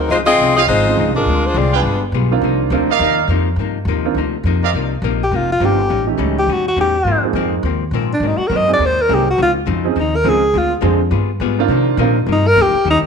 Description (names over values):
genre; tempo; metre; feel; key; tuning
jazz, big band swing; 207 BPM; 4/4; swing 60% on 8ths; C minor; A4 = 440 Hz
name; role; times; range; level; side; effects
clear saxophone section; melody; 0.0-2.0 s; Gb3 to Eb5; -14 LUFS; left 2 dB; none
upright bass; bass; 0.0-13.0 s; F1 to C3; -19 LUFS; equal; none
archtop guitar, miked and amplified; accompaniment; 0.1-13.0 s; Ab2 to Ab4; -22 LUFS; left 11 dB; none
clear trumpet section; stabs; 0.6-4.7 s; C4 to G5; -19 LUFS; right 8 dB; none
clear baby grand piano; accompaniment; 0.9-12.2 s; Eb3 to Ab4; -20 LUFS; right 9 dB; none
warm alto saxophone; melody; 5.2-13.0 s; D4 to Eb5; -15 LUFS; equal; none
room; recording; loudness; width
moderate echo chamber reverb, RT60 1.4 s, small room ambience; 1960s-style stereo with parts hard left and right; -13 LUFS; side -6 dB against mid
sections
0.0-4.7 A section; 4.7-13.1 B section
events
alto saxophone solo 4.7-13.1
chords
0.1 Dbmaj9; 1.3 Dm7b5; 1.8 G7b9; 2.4 Cm11; 5.9 A7#11; 7.1 Ab69; 8.2 Ab9; 9.4 Dbmaj9; 10.5 Dm7b5; 11.1 G7b9; 11.7 Cm11